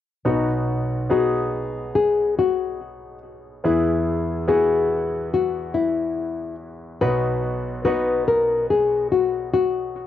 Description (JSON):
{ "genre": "pop", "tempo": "71 BPM", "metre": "4/4", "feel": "straight", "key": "B major", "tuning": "A4 = 440 Hz", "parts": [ { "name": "bright concert grand piano", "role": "accompaniment", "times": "0.2-10.1 s", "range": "B1 to G#4", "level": "-26 LUFS", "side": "right 1 dB", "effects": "none" }, { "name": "nylon-string guitar", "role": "melody", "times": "0.3-10.1 s", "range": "D#4 to B4", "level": "-21 LUFS", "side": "left 4 dB", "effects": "cassette tape" } ], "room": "wet booth ambience, RT60 0.2 s", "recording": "home recording on cassette", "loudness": "-19 LUFS", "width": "side -11 dB against mid", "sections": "0.3-10.1 A section", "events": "none", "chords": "0.3 B; 3.6 E; 7.0 B" }